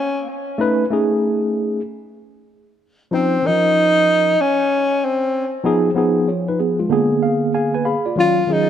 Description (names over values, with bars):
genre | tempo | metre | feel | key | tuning
hip hop | 95 BPM | 4/4 | swing 64% on 16ths | unclear | A4 = 441 Hz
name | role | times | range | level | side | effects
breathy tenor saxophone | melody | 0.0-8.7 s | C4 to F4 | -17 LUFS | left 1 dB | analog delay
tine electric piano | accompaniment | 0.6-8.7 s | D3 to Cb6 | -17 LUFS | equal | medium stereo tremolo
room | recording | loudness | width
moderate echo chamber reverb, RT60 2.2 s | none | -15 LUFS | side -10 dB against mid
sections
0.0-8.7 A section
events
tine electric piano fill 6.9-8.2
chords
0.0 N.C.; 0.6 B9 (rootless); 3.1 Dbmaj9; 5.6 Fm7b5; 6.9 Bb7b9; 8.2 Ebm9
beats
| 0.59 1.23 1.86 2.49 | 3.12 3.75 4.38 5.01 | 5.65 6.28 6.91 7.54 | 8.17